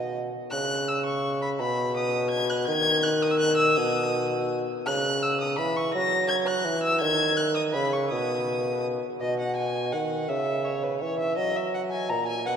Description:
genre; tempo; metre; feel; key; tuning
classical, renaissance-style consort dance; 166 BPM; 3/4; straight; C# dorian; A4 = 439 Hz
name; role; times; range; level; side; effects
warm violin; melody; 0.0-12.5 s; B4 to A#6; -27 LUFS; left 2 dB; none
mellow bassoon; bass; 0.0-12.6 s; A#2 to F#3; -26 LUFS; right 1 dB; none
room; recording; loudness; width
wet cathedral reverb, RT60 4.8 s; heard from further back in the room; -23 LUFS; side -7 dB against mid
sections
0.5-9.2 A section; 9.2-12.6 B section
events
none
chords
0.0 B; 0.5 C#sus4; 1.6 B; 2.7 D#madd11; 3.8 B; 4.9 C#m; 5.9 F#; 7.0 C#sus2; 8.1 B; 10.3 C#m; 11.4 F#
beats
0.16 | 0.52 0.88 1.25 | 1.60 1.96 2.32 | 2.68 3.04 3.40 | 3.76 4.13 4.49 | 4.86 5.22 5.58 | 5.94 6.30 6.66 | 7.02 7.38 7.74 | 8.11 8.47 8.84 | 9.21 9.57 9.94 | 10.29 10.65 11.02 | 11.38 11.74 12.10 | 12.46

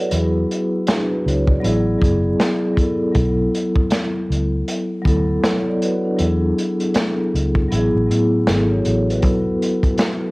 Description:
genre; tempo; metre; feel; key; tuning
lo-fi hip hop; 79 BPM; 4/4; swing 59% on 16ths; B dorian; A4 = 443 Hz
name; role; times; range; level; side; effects
vibraphone with soft mallets; accompaniment; 0.0-10.3 s; F#3 to F#5; -19 LUFS; equal; low-pass filter
vintage muted fingered electric bass; bass; 0.1-9.6 s; F#1 to A2; -20 LUFS; equal; none
crunchy breakbeat drum kit; drums; 0.1-10.2 s; hi-hat, kick drum, snare drum; -20 LUFS; equal; cassette tape
room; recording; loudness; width
moderate studio reverb, RT60 0.6 s; home recording on cassette, vinyl crackle; -16 LUFS; side -23 dB against mid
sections
0.0-10.3 A section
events
kick muted 7.7-9.2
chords
0.1 E69; 1.6 Asus2; 3.2 Bm9; 6.2 E69; 7.7 Asus2; 9.2 B7(no3)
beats
| 0.11 0.87 1.63 2.39 | 3.15 3.91 4.67 5.43 | 6.19 6.95 7.71 8.47 | 9.23 9.99

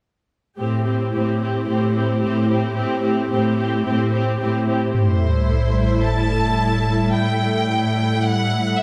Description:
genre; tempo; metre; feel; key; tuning
cinematic, hybrid orchestral and electronic film score; 110 BPM; 4/4; straight; A minor; A4 = 440 Hz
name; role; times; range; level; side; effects
rich symphonic viola section; accompaniment; 0.6-4.9 s; C4 to G4; -27 LUFS; equal; none
hollow soft pad; sustained chords; 0.6-8.8 s; G3 to E5; -26 LUFS; equal; ensemble chorus
rich symphonic cello section; bass; 0.6-8.8 s; A2; -24 LUFS; equal; none
sub drop; sound effects; 4.9-7.1 s; none; -24 LUFS; equal; none
warm symphonic violin section; melody; 5.0-8.8 s; C5 to A5; -26 LUFS; equal; none
room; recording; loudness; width
moderate scoring stage reverb, RT60 1.7 s; none; -20 LUFS; mono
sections
0.6-5.0 A section; 5.0-8.8 B section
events
impact 5.0-7.1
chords
0.6 Am7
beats
| 0.59 1.14 1.68 2.23 | 2.77 3.32 3.86 4.41 | 4.95 5.50 6.04 6.59 | 7.13 7.68 8.23 8.77

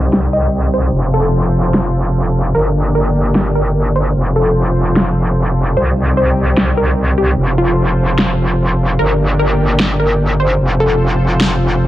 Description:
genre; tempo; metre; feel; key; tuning
heavy wobble dubstep; 149 BPM; 4/4; swing 55% on 16ths, half-time; unclear; A4 = 440 Hz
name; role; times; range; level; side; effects
wide unison pluck; melody; 0.0-11.9 s; F4 to Eb5; -19 LUFS; equal; dub echo
lush unison pad; sustained chords; 0.0-11.9 s; C3 to C5; -20 LUFS; equal; chorus
metallic wobble bass; bass; 0.0-11.9 s; F1 to C2; -14 LUFS; equal; chorus, overdrive
electronic snare drum; drums; 0.1-11.5 s; none; -15 LUFS; equal; none
room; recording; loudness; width
little or no reverb; low-pass filter; -12 LUFS; side -14 dB against mid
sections
0.0-11.9 A section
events
filter sweep 0.0-11.9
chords
0.0 Cm; 0.9 F; 2.5 Gm; 4.2 F; 5.8 Cm; 7.4 F; 9.0 Gm; 10.6 F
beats
0.13 0.53 | 0.94 1.34 1.74 2.15 | 2.55 2.95 3.35 3.75 | 4.16 4.56 4.96 5.37 | 5.77 6.17 6.57 6.98 | 7.38 7.78 8.19 8.59 | 8.99 9.39 9.80 10.20 | 10.60 11.00 11.41 11.81

